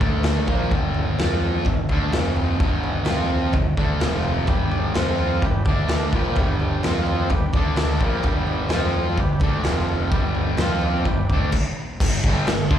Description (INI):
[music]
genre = garage rock duo or trio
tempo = 128 BPM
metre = 4/4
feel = straight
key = G mixolydian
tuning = A4 = 439 Hz
[part]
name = fuzz guitar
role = riff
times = 0.0-12.8 s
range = F2 to F4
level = -23 LUFS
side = equal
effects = distortion
[part]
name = growling picked electric bass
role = bass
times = 0.0-12.8 s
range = F1 to F2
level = -25 LUFS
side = equal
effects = overdrive
[part]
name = raw garage drum kit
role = drums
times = 0.0-12.8 s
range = crash cymbal, kick drum, snare drum, toms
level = -22 LUFS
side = equal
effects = none
[part]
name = combo organ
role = sustained chords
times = 4.5-11.5 s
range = C4 to D5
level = -31 LUFS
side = right 1 dB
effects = none
[sound]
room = little or no reverb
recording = live gig heard through the venue's PA, club reverb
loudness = -19 LUFS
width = side -10 dB against mid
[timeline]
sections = 0.0-12.0 A section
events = stop 11.5-12.0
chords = 0.0 D5; 0.5 G5; 1.2 F5; 1.7 G5; 2.1 F5; 2.6 G5; 3.1 F5; 3.5 G5; 4.0 F5; 4.5 G; 5.0 F5; 5.4 G; 5.7 D5; 6.1 G; 6.8 F5; 7.3 G; 7.5 D5; 8.0 G; 8.7 F5; 9.2 G; 9.7 F5; 10.1 G; 10.6 F5; 11.1 G; 11.5 N.C.; 12.0 G5